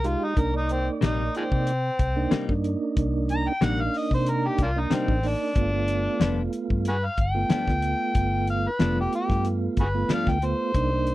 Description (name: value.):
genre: straight-eighth soul blues.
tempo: 92 BPM.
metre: 4/4.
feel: swing 53% on 16ths.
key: unclear.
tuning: A4 = 435 Hz.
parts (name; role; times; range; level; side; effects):
overdriven harmonica; melody; 0.0-11.1 s; F3 to Bb5; -27 LUFS; left 1 dB; slapback echo.
mellow tonewheel organ; accompaniment; 0.0-11.1 s; Ab3 to D5; -28 LUFS; right 4 dB; slow rotary speaker.
vintage muted fingered electric bass; bass; 0.0-11.1 s; F1 to C3; -27 LUFS; equal; none.
cloth-damped thuddy drum kit; drums; 0.0-11.1 s; hi-hat, kick drum, snare drum; -26 LUFS; equal; none.
direct-recorded clean electric guitar; stabs; 1.0-10.3 s; G2 to Eb4; -27 LUFS; left 6 dB; none.
room: light reverb.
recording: dry, close 1970s-style studio recording.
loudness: -22 LUFS.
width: side -16 dB against mid.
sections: 0.0-11.1 A section.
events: harmonica solo 0.0-11.1.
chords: 0.4 Cm7; 5.6 G7.